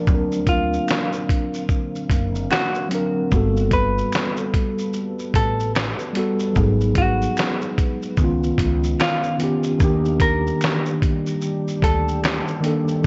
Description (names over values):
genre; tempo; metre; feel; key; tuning
lo-fi hip hop; 74 BPM; 4/4; swing 62% on 16ths; unclear; A4 = 440 Hz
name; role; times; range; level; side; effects
mellow tine electric piano; accompaniment; 0.0-13.1 s; D#3 to A#4; -25 LUFS; equal; cassette tape, low-pass filter
deep dark ambient pad; sustained chords; 0.0-13.1 s; C#3 to E#5; -35 LUFS; equal; chorus, built-in reverb, low-pass filter
upright bass; bass; 0.1-13.1 s; F#1 to Eb2; -26 LUFS; equal; none
dusty soul sampler-style drum kit; drums; 0.1-13.1 s; handclaps, hi-hat, kick drum, shaker, snare drum; -24 LUFS; equal; vintage 12-bit sampler grit
vintage hollow-body jazz guitar; melody; 0.5-12.2 s; E#4 to B4; -28 LUFS; equal; low-pass filter, tape echo
finger snaps; percussion; 0.9-12.5 s; none; -38 LUFS; equal; none
room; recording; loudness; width
light reverb; cassette tape, nothing above 7.8 kHz; -21 LUFS; mono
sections
0.0-13.1 A section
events
none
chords
0.1 D7alt; 3.3 Gmaj9; 6.6 Abm7; 8.2 C#9; 9.8 Ebmaj7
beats
| 0.07 0.88 1.69 2.50 | 3.31 4.12 4.93 5.75 | 6.56 7.37 8.18 8.99 | 9.80 10.61 11.42 12.23 | 13.04